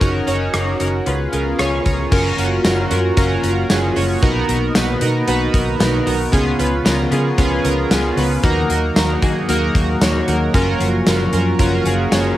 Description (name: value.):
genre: 1980s-style pop.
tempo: 114 BPM.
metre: 4/4.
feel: swing 55% on 16ths.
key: F# major.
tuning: A4 = 438 Hz.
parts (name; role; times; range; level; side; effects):
chorused retro synth keys; accompaniment; 0.0-12.4 s; A#3 to A#5; -18 LUFS; right 1 dB; cassette tape.
string machine, full ensemble; sustained chords; 0.0-12.4 s; B2 to F#4; -23 LUFS; equal; ensemble chorus, cassette tape.
vintage muted fingered electric bass; bass; 0.0-12.3 s; F#1 to D#3; -21 LUFS; equal; none.
gated 80s drum kit; drums; 0.0-12.3 s; crash cymbal, hi-hat, kick drum, rim click, snare drum, tambourine; -20 LUFS; equal; cassette tape.
tambourine; percussion; 2.6-12.3 s; none; -32 LUFS; left 3 dB; none.
room: light reverb.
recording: home recording on cassette.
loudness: -14 LUFS.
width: side -14 dB against mid.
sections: 0.0-2.1 A section; 2.1-12.4 B section.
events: synth keys fill 1.1-2.1.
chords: 0.0 D#m7/F#; 1.1 C#7; 2.1 F#maj7; 4.2 Bmaj7; 6.3 C#7; 8.4 D#m; 10.5 F#maj7.